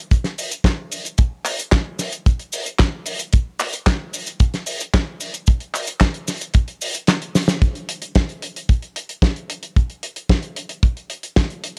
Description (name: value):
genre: italo disco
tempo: 112 BPM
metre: 4/4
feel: straight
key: none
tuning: none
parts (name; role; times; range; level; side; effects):
- damped 70s drum kit; drums; 0.1-11.7 s; cabasa, handclaps, hi-hat, snare drum; -24 LUFS; equal; small room ambience
- kick drum; drums; 0.1-11.5 s; none; -17 LUFS; equal; small room ambience
room: little or no reverb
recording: dry, gritty hardware recording, cassette tape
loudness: -21 LUFS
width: mono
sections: 0.0-7.6 A section; 7.6-11.8 B section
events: kick drops out 7.1-7.6; drum fill 7.3; band accent 7.5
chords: none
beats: 0.12 0.65 | 1.19 1.73 2.26 2.80 | 3.33 3.87 4.40 4.94 | 5.47 6.01 6.55 7.08 | 7.62 8.15 8.69 9.22 | 9.76 10.30 10.83 11.37